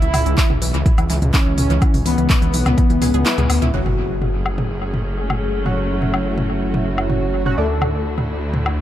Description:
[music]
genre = melodic techno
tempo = 125 BPM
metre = 4/4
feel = straight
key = F# minor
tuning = A4 = 440 Hz
[part]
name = analog synth brass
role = melody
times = 0.0-8.2 s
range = B3 to A4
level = -24 LUFS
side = left 2 dB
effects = chorus, sidechain pumping, tape echo
[part]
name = wide unison pluck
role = arpeggios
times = 0.0-3.7 s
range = E3 to G#4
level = -25 LUFS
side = right 1 dB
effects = sidechain pumping, tape echo
[part]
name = swelling detuned saw bass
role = bass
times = 0.0-8.8 s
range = F#1 to D2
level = -21 LUFS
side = equal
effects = sidechain pumping
[part]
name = deep house drum kit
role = drums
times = 0.0-8.8 s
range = handclaps, hi-hat, toms, woodblock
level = -23 LUFS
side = equal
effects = tape echo
[part]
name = electronic kick drum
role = drums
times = 0.4-2.9 s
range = none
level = -16 LUFS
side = equal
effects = none
[part]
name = clear studio string section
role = sustained chords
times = 3.7-8.8 s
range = D3 to G#4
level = -27 LUFS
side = equal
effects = sidechain pumping
[part]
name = sync-sweep polysynth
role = stabs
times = 3.7-7.7 s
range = D3 to F#4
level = -25 LUFS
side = right 3 dB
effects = chorus, sidechain pumping, tape echo
[part]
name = impact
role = sound effects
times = 3.7-5.7 s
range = none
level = -27 LUFS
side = equal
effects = none
[sound]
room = light reverb, digital ambience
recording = echo-heavy mix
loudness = -16 LUFS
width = side -12 dB against mid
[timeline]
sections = 0.0-3.7 A section; 3.7-8.8 B section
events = kick drops out 3.3-3.7; drum fill 3.3-3.7; band accent 3.3; impact 3.7-5.7; filter sweep on analog polysynth 3.7-8.8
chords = 0.0 C#m; 3.7 F#m; 7.6 D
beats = 0.38 0.86 1.34 | 1.82 2.30 2.78 3.26 | 3.74 4.22 4.70 5.18 | 5.66 6.14 6.62 7.10 | 7.58 8.06 8.54

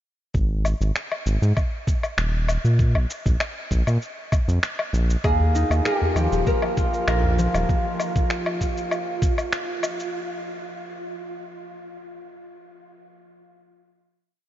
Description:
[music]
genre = organic downtempo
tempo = 98 BPM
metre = 4/4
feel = straight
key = unclear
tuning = A4 = 442 Hz
[part]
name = round analog bass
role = bass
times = 0.3-7.7 s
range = Eb1 to Bb2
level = -20 LUFS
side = equal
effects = none
[part]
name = electronic kick drum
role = drums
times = 0.3-9.3 s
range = none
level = -23 LUFS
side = equal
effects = none
[part]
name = electronic shaker, woodblock and finger snaps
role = drums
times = 0.3-10.1 s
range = none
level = -29 LUFS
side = left 2 dB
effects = none
[part]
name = oud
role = melody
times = 5.2-7.7 s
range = G4 to Bb4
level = -28 LUFS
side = equal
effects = analog delay
[part]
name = concert harp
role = arpeggios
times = 5.2-9.3 s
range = F3 to Bb4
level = -28 LUFS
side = equal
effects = analog delay
[part]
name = wind-like tuned noise texture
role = texture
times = 6.3-10.2 s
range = F4 to F5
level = -33 LUFS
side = right 3 dB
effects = built-in reverb, lush chorus
[part]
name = udu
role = percussion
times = 5.4-7.4 s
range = none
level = -26 LUFS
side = equal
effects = none
[sound]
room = moderate huge ambient reverb, RT60 7.7 s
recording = dreamy mix soaked in reverb, nothing above 7.5 kHz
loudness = -20 LUFS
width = side -12 dB against mid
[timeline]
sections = 0.3-10.1 groove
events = none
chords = 0.3 Absus2; 2.8 Bb5; 5.2 Eb5; 7.7 N.C.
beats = | 0.34 0.96 1.57 2.18 | 2.79 3.40 4.02 4.63 | 5.24 5.85 6.47 7.08 | 7.69 8.30 8.91 9.53

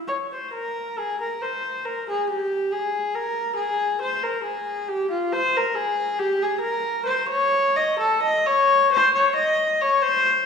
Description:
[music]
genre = classical, baroque-style suite movement for unaccompanied viola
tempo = 68 BPM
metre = 3/4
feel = rubato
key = unclear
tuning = A4 = 440 Hz
[part]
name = warm viola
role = solo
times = 0.1-10.5 s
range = F4 to Eb5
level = -20 LUFS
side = left 2 dB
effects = none
[sound]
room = wet recital hall reverb, RT60 1.5 s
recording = heard from further back in the room, studio ambience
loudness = -20 LUFS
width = side -6 dB against mid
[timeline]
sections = 0.0-10.5 A section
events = none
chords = none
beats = | 0.07 0.97 1.84 | 2.73 3.58 4.45 | 5.33 6.21 7.08 | 8.00 8.92 9.80

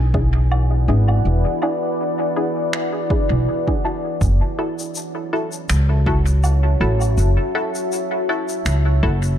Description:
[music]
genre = ambient dub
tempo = 81 BPM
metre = 4/4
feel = swing 55% on 16ths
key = F# minor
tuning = A4 = 440 Hz
[part]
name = deep dark ambient pad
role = sustained chords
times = 0.0-9.4 s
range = E4 to A5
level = -24 LUFS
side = left 1 dB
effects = chorus, built-in reverb
[part]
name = upright bass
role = bass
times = 0.0-9.4 s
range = E1 to C#2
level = -16 LUFS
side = equal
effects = none
[part]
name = filtered dub chord stab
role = stabs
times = 0.1-9.2 s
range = D4 to A4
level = -26 LUFS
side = left 1 dB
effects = analog chorus, dub echo
[part]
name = electronic kick drum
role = drums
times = 0.1-9.2 s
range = none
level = -22 LUFS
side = equal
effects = overdrive
[part]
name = woodblock, finger snaps and shaker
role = drums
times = 0.5-9.4 s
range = none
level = -29 LUFS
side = right 1 dB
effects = dub echo
[sound]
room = studio ambience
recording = dark, warm production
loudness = -17 LUFS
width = side -10 dB against mid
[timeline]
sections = 0.0-9.4 A section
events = none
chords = 0.0 E7; 4.2 F#m7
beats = 0.51 | 1.25 1.99 2.73 3.48 | 4.22 4.96 5.70 6.44 | 7.18 7.92 8.66

